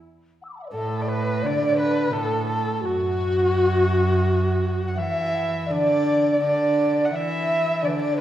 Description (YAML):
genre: chinese traditional, Chinese chamber ensemble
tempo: 85 BPM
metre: 4/4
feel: rubato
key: D gong mode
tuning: A4 = 440 Hz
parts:
  - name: mellow hollow large dizi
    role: second line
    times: 0.4-8.2 s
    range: F#4 to E6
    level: -24 LUFS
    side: left 1 dB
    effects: none
  - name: dark erhu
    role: melody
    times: 0.7-8.2 s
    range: F#4 to F#5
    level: -26 LUFS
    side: equal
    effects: none
  - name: rich cello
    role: second line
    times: 0.7-8.2 s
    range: F#2 to E3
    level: -23 LUFS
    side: right 1 dB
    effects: none
room: wet recital hall reverb, RT60 1.5 s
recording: heard from further back in the room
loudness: -20 LUFS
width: side -12 dB against mid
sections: 0.0-8.2 A section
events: none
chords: none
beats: | 0.03 0.72 1.41 2.10 | 2.80 3.50 4.21 4.94 | 5.68 6.40 7.11 7.82